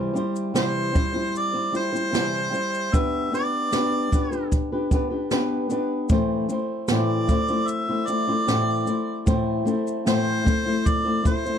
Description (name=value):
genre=acoustic pop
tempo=76 BPM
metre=4/4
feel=straight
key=unclear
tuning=A4 = 444 Hz
part: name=flamenco guitar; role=accompaniment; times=0.0-11.6 s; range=A2 to C5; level=-24 LUFS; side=left 2 dB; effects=none
part: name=jazz brush drum kit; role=drums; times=0.2-11.6 s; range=kick drum, shaker, snare drum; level=-24 LUFS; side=right 1 dB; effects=none
part: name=warm harmonica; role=melody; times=0.6-11.6 s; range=C5 to E5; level=-26 LUFS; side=right 1 dB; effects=none
room=little or no reverb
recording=none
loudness=-21 LUFS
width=side -8 dB against mid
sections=0.0-11.6 A section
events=none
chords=0.0 C; 2.9 G/B; 6.1 Am